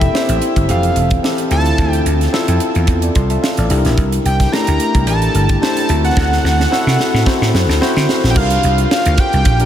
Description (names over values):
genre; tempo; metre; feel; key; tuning
polished 1980s jazz-funk pop; 110 BPM; 4/4; swing 54% on 16ths; unclear; A4 = 439 Hz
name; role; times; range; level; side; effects
fat analog lead; melody; 0.0-9.7 s; E5 to Bb5; -20 LUFS; right 1 dB; chorus, tape echo
barky tine electric piano; accompaniment; 0.0-9.7 s; E3 to C6; -18 LUFS; left 2 dB; overdrive, wide subtle chorus
vintage slap bass; bass; 0.0-9.7 s; E1 to D3; -15 LUFS; equal; none
crisp fusion drum kit; drums; 0.0-9.7 s; crash cymbal, hi-hat, kick drum, snare drum; -18 LUFS; right 1 dB; none
room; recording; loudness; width
moderate huge ambient reverb, RT60 7.8 s; dreamy mix soaked in reverb; -12 LUFS; side -10 dB against mid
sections
0.0-8.4 A section; 8.4-9.7 B section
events
tine electric piano fill 2.9-4.0; drum fill 6.2-8.4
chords
0.0 Fmaj9; 1.5 Dm9; 3.7 C9; 5.9 D7; 8.4 C7sus4